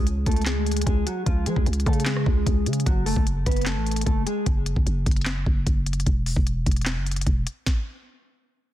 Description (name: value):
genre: hip hop, trap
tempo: 150 BPM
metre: 4/4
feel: half-time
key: F# minor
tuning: A4 = 438 Hz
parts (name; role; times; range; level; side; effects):
- mellow electric guitar; melody; 0.0-4.5 s; E#3 to B4; -28 LUFS; left 1 dB; low-pass filter, ping-pong delay
- growling 808-style bass; bass; 0.0-7.5 s; E1 to E#3; -25 LUFS; equal; none
- trap drum kit; drums; 0.1-7.8 s; handclaps, hi-hat, kick drum, rim click, snare drum; -23 LUFS; equal; none
room: digital ambience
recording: dense, heavily limited modern master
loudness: -21 LUFS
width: side -13 dB against mid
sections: 0.0-8.7 A section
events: stop 7.7-8.7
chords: 0.0 C#5; 2.9 F#m; 6.1 N.C.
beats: 0.06 0.46 0.86 | 1.26 1.66 2.06 2.46 | 2.86 3.26 3.66 4.06 | 4.46 4.86 5.26 5.66 | 6.06 6.46 6.86 7.26 | 7.66